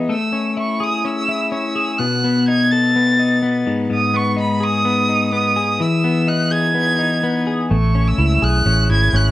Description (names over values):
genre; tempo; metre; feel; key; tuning
jangly indie pop; 126 BPM; 4/4; straight; unclear; A4 = 440 Hz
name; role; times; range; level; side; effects
twelve-string electric guitar; arpeggios; 0.0-9.3 s; G#2 to A4; -18 LUFS; left 2 dB; none
rich violin; melody; 0.1-9.3 s; B5 to A6; -20 LUFS; right 2 dB; none
vintage muted fingered electric bass; bass; 7.7-9.3 s; G#1 to C#2; -15 LUFS; right 1 dB; none
room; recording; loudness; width
moderate studio reverb, RT60 0.6 s; worn, warbling old tape, cassette tape, warbly pitch drift; -15 LUFS; side -15 dB against mid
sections
0.1-9.3 A section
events
none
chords
0.1 Amaj7; 2.0 B7; 3.7 G#m; 5.8 Emaj7; 7.7 Amaj7